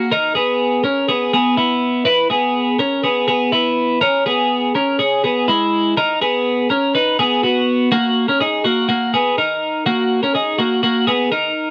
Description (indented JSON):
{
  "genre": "indie pop",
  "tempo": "123 BPM",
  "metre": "4/4",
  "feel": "straight",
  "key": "unclear",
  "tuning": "A4 = 440 Hz",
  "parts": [
    { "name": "twelve-string electric guitar", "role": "solo", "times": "0.0-11.7 s", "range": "G#3 to B4", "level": "-17 LUFS", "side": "equal", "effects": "none" }
  ],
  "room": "light reverb",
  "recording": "recorded outdoors, with no room sound",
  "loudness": "-17 LUFS",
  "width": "mono",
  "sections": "0.1-7.9 A section; 7.9-11.7 B section",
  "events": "none",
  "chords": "0.1 Emaj7; 1.8 E6/B; 4.0 C#m; 6.0 B; 7.9 D#m"
}